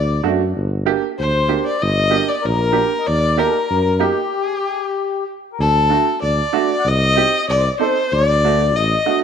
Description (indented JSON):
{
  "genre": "klezmer",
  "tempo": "95 BPM",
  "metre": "2/4",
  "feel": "straight",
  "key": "G harmonic minor",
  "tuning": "A4 = 440 Hz",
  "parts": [
    { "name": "warm violin", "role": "melody", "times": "0.0-9.2 s", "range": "G4 to Eb5", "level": "-18 LUFS", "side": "left 2 dB", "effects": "none" },
    { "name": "mellow accordion", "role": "second line", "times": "0.0-9.2 s", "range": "G4 to F#5", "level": "-24 LUFS", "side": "left 9 dB", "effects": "none" },
    { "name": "mellow tuba", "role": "bass", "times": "0.0-8.9 s", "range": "G1 to F#2", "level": "-19 LUFS", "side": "equal", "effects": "none" },
    { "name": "clear upright piano", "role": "accompaniment", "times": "0.2-9.2 s", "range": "A3 to A4", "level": "-21 LUFS", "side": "right 12 dB", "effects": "none" }
  ],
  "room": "moderate echo chamber reverb, RT60 1.7 s, studio ambience",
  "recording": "1960s-style stereo with parts hard left and right",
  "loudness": "-15 LUFS",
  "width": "side -7 dB against mid",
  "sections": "0.0-5.6 A section; 5.6-9.2 B section",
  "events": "stop 4.3-5.6",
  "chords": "0.0 D; 0.6 Gm; 3.1 Eb; 4.3 N.C.; 5.6 D; 6.9 Cm; 8.1 D"
}